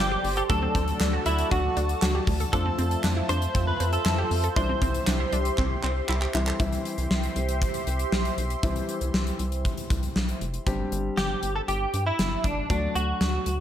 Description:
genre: synth-pop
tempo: 118 BPM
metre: 4/4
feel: straight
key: C major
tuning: A4 = 440 Hz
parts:
  - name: direct-recorded clean electric guitar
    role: melody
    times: 0.0-6.0, 11.2-13.6 s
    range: D4 to C5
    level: -28 LUFS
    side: right 1 dB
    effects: analog chorus, slapback echo
  - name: warm grand piano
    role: accompaniment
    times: 0.0-13.6 s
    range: E3 to G4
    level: -34 LUFS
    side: left 3 dB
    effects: none
  - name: phased analog pad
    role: sustained chords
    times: 0.0-10.6 s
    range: F4 to C6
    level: -33 LUFS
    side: right 1 dB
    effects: phaser, chorus
  - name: wide unison pluck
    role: arpeggios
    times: 0.0-6.6 s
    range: C4 to A4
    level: -34 LUFS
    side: right 2 dB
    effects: slapback echo
  - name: rubbery square bass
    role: bass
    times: 0.0-13.6 s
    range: F1 to G2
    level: -28 LUFS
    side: equal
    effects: none
  - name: gated 80s drum kit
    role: drums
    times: 0.2-13.6 s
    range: handclaps, hi-hat, kick drum, snare drum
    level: -28 LUFS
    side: equal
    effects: gated reverb
room: light reverb, studio reverb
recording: none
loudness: -23 LUFS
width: side -10 dB against mid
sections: 0.0-6.6 A section; 6.6-10.7 B section; 10.7-13.6 C section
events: drum fill 5.6-6.6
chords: 0.5 D; 2.5 Fmaj7; 4.6 C; 10.7 Gsus4; 12.7 D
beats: | 0.50 1.00 1.51 2.02 | 2.53 3.04 3.55 4.06 | 4.56 5.07 5.58 6.09 | 6.60 7.11 7.62 8.12 | 8.63 9.14 9.65 10.16 | 10.67 11.17 11.68 12.19 | 12.70 13.21

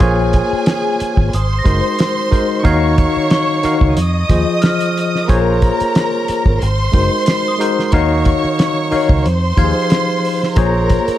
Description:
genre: lush 1970s-style soul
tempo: 91 BPM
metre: 4/4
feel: swing 54% on 16ths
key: Eb dorian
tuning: A4 = 439 Hz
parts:
  - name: warm symphonic violin section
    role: second line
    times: 0.0-11.2 s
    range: Ab4 to Eb6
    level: -20 LUFS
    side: right 1 dB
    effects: none
  - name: tine electric piano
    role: accompaniment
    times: 0.0-11.2 s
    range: Eb3 to F5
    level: -17 LUFS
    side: left 2 dB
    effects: medium stereo tremolo
  - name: vintage muted fingered electric bass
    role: bass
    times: 0.0-11.1 s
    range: Gb1 to F2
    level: -17 LUFS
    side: equal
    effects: none
  - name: cloth-damped thuddy drum kit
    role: drums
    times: 0.0-11.2 s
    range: hi-hat, kick drum, snare drum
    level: -15 LUFS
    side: equal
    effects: none
  - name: glockenspiel with soft plastic mallets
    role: texture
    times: 0.0-11.1 s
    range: Bb5 to C7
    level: -28 LUFS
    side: right 2 dB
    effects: none
room: light reverb, small room reverb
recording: none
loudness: -12 LUFS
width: side -13 dB against mid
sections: 0.0-11.2 A section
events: none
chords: 0.0 Bbm7; 1.3 Ab9; 2.6 Ebm9; 4.0 Fm7; 5.3 Bbm7; 6.6 Ab9; 7.9 Ebm9; 9.2 Fm7; 10.6 Bbm7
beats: | 0.01 0.67 1.33 1.99 | 2.65 3.31 3.97 4.63 | 5.29 5.95 6.61 7.27 | 7.93 8.59 9.25 9.91 | 10.57

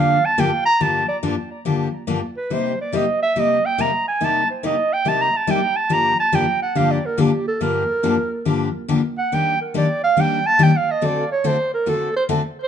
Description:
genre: jazz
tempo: 141 BPM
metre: 4/4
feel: swing 64% on 8ths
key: G minor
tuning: A4 = 440 Hz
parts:
  - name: breathy clarinet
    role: melody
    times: 0.0-12.7 s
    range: G4 to Bb5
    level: -19 LUFS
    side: right 3 dB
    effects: tape echo
  - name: picked steel-string acoustic guitar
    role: accompaniment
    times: 0.0-12.4 s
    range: G2 to A4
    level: -20 LUFS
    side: left 4 dB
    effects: none
room: moderate studio reverb, RT60 0.6 s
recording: dark, warm production, nothing above 11.0 kHz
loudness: -17 LUFS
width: side -8 dB against mid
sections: 0.0-12.7 A section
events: clarinet solo 0.0-12.7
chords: 0.0 Gm7; 2.5 Cm7; 5.9 Gm7; 9.3 Ebmaj7; 11.0 D7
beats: 0.38 | 0.80 1.23 1.65 2.08 | 2.50 2.93 3.35 3.78 | 4.20 4.63 5.05 5.48 | 5.91 6.33 6.76 7.18 | 7.61 8.03 8.46 8.89 | 9.31 9.74 10.16 10.59 | 11.01 11.44 11.86 12.29

